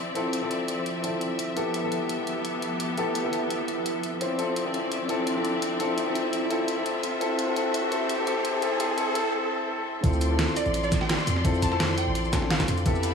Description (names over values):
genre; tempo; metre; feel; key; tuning
liquid drum and bass; 170 BPM; 4/4; straight; D dorian; A4 = 440 Hz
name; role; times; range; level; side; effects
dark grand piano; accompaniment; 0.0-13.1 s; B3 to C5; -28 LUFS; left 2 dB; digital delay
bright symphonic string section; sustained chords; 0.0-13.1 s; F3 to C6; -31 LUFS; left 2 dB; sidechain pumping
riser; sound effects; 2.1-9.3 s; none; -34 LUFS; right 3 dB; none
pop drum kit; drums; 0.2-13.1 s; hi-hat, shaker, snare drum; -31 LUFS; right 1 dB; overdrive
long sustained 808-style bass; bass; 10.0-13.1 s; A1 to F2; -28 LUFS; equal; none
breakbeat sampler-style drum kit; drums; 10.0-13.1 s; hi-hat, snare drum; -33 LUFS; right 1 dB; high-pass filter on hats, high-pass filter on snare
electronic kick drum; drums; 10.0-12.9 s; none; -26 LUFS; equal; overdrive
glassy wavetable pluck; melody; 10.6-12.9 s; D5 to A5; -32 LUFS; right 3 dB; chorus, digital delay
room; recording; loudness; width
moderate huge ambient reverb, RT60 7.9 s; high-pass filter, studio ambience; -24 LUFS; side -6 dB against mid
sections
0.0-10.0 A section; 10.0-13.1 B section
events
build-up 0.0-10.0; riser 2.1-9.3; break 9.3-10.0; drop 10.0-13.1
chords
0.0 Dm9; 1.6 Fmaj9#11; 4.2 Dm9; 7.0 C6; 10.0 Dm9